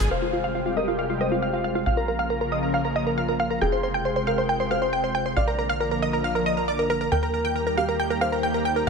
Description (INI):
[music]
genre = trance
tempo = 137 BPM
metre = 4/4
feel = straight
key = F minor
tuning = A4 = 441 Hz
[part]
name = wide unison pluck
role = melody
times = 0.0-8.9 s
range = F4 to G5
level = -25 LUFS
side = right 1 dB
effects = tape echo
[part]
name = supersaw stab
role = second line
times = 0.0-8.9 s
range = F5 to G6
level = -33 LUFS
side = right 2 dB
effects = low-pass filter, tape echo
[part]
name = analog string pad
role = sustained chords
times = 0.0-8.9 s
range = C3 to G5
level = -28 LUFS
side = equal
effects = ensemble chorus
[part]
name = tight sequencer bass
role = bass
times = 0.0-8.9 s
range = F1 to Eb2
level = -31 LUFS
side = equal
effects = none
[part]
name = felt-muted upright piano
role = second line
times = 0.1-8.9 s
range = G4 to F5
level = -30 LUFS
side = left 2 dB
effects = vintage 12-bit sampler grit, dub echo
[sound]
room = moderate lush hall reverb, RT60 2.3 s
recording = none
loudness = -22 LUFS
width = side -5 dB against mid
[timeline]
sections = 0.1-8.9 A section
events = filter sweep on synth pluck 0.1-8.9; filter sweep on supersaw synth 0.1-8.9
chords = 0.1 Fmadd9; 1.9 Bbm; 3.6 Fmadd9; 5.4 Bb; 7.1 Ebadd9